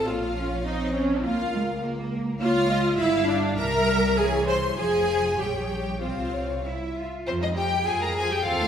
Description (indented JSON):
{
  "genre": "quick classical-period movement for string orchestra",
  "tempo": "101 BPM",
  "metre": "2/4",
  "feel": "rubato",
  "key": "F minor",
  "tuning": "A4 = 441 Hz",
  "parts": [
    { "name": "rich studio violin section", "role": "melody", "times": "0.0-8.7 s", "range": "Bb4 to Bb5", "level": "-30 LUFS", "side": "left 3 dB", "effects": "none" },
    { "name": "rich studio violin section", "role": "second line", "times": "0.0-8.7 s", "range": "C4 to C6", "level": "-31 LUFS", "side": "left 1 dB", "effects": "none" },
    { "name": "rich studio viola section", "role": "accompaniment", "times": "0.0-8.7 s", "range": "F3 to C5", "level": "-26 LUFS", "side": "equal", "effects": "none" },
    { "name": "rich studio double bass section", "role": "bass", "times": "0.0-8.7 s", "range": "F1 to F2", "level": "-31 LUFS", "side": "right 2 dB", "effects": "none" },
    { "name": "rich symphonic cello section", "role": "bass", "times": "0.0-8.7 s", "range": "E3 to A4", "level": "-30 LUFS", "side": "right 1 dB", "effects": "none" }
  ],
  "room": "wet recital hall reverb, RT60 1.4 s",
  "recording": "recorded in a church or concert hall",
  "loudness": "-22 LUFS",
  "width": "side -8 dB against mid",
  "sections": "0.0-7.3 A section; 7.3-8.7 B section",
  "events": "none",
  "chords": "0.1 Bbm; 1.2 Bbm/Db; 3.0 G5; 3.6 C7; 4.8 Fm; 5.4 Gdim/Bb; 6.0 Csus4; 6.7 C; 7.3 Fm"
}